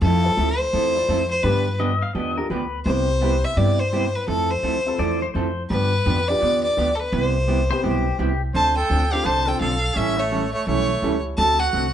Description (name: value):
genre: country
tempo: 169 BPM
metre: 4/4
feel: swing 63% on 8ths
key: C major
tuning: A4 = 440 Hz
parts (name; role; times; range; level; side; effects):
- clear fiddle; melody; 0.0-11.9 s; A4 to A5; -22 LUFS; left 1 dB; none
- hollow-body jazz guitar; accompaniment; 0.0-11.9 s; C3 to A4; -26 LUFS; right 4 dB; none
- upright bass; bass; 0.0-11.9 s; A1 to G2; -24 LUFS; equal; none
- warm upright piano; accompaniment; 0.2-11.4 s; B3 to D5; -30 LUFS; left 3 dB; none
- pedal steel guitar; second line; 1.8-2.8, 5.0-8.4 s; G4 to F5; -27 LUFS; left 5 dB; none
- warm trumpet; second line; 8.5-11.9 s; A3 to C5; -27 LUFS; right 3 dB; none
room: moderate studio reverb, RT60 0.7 s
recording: band playing live in one room, nothing above 11.0 kHz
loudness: -19 LUFS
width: side -10 dB against mid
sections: 0.0-11.9 A section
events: none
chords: 0.0 Fmaj7; 1.4 G7; 2.9 Cmaj7; 4.3 Fmaj7; 5.7 G7; 7.1 Cmaj7; 8.5 Dm7; 10.0 A7; 11.4 D7